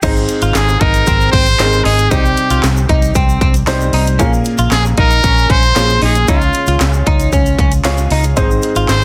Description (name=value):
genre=piano-driven pop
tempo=115 BPM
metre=4/4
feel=straight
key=Ab major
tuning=A4 = 440 Hz
part: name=clear upright piano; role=accompaniment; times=0.0-9.0 s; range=Ab2 to Db5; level=-21 LUFS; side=equal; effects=none
part: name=direct-recorded clean electric guitar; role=riff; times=0.0-8.9 s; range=C4 to F4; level=-22 LUFS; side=equal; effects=analog chorus
part: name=vintage muted fingered electric bass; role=bass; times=0.0-9.0 s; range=Ab1 to Db2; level=-18 LUFS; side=equal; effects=none
part: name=house drum kit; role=drums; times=0.0-9.0 s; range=crash cymbal, handclaps, hi-hat, kick drum, snare drum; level=-18 LUFS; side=equal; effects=overdrive
part: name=tube shaker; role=percussion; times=0.0-9.0 s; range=none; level=-34 LUFS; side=equal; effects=none
part: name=brilliant trumpet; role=melody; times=0.6-9.0 s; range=F4 to C5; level=-18 LUFS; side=equal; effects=tape echo
room=light reverb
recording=dense, heavily limited modern master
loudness=-13 LUFS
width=mono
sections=0.0-9.0 A section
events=none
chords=0.0 Ab; 2.1 Cm; 4.2 Bbm7; 6.3 Db; 8.4 Ab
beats=| 0.03 0.55 1.07 1.59 | 2.12 2.64 3.16 3.68 | 4.20 4.72 5.24 5.76 | 6.28 6.80 7.33 7.85 | 8.37 8.89